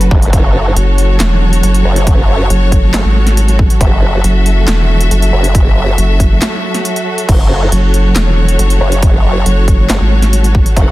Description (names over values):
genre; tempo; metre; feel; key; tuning
heavy wobble dubstep; 138 BPM; 4/4; half-time; F# minor; A4 = 440 Hz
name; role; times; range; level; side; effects
bright studio string section; sustained chords; 0.0-10.9 s; F#3 to F#5; -17 LUFS; equal; sidechain pumping
vowel-sweep wobble bass; bass; 0.0-10.6 s; E1 to G#1; -10 LUFS; equal; chorus, overdrive
big-room dance drum kit; drums; 0.0-10.9 s; crash cymbal, handclaps, hi-hat, snare drum; -18 LUFS; equal; none
formant-sweep wobble bass; bass; 0.1-10.9 s; F#1; -12 LUFS; equal; chorus, overdrive
electronic kick drum; drums; 0.1-10.9 s; none; -10 LUFS; equal; none
room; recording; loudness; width
little or no reverb; dense, heavily limited modern master; -8 LUFS; side -17 dB against mid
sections
0.0-10.9 A section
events
break 6.4-7.3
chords
0.0 F#m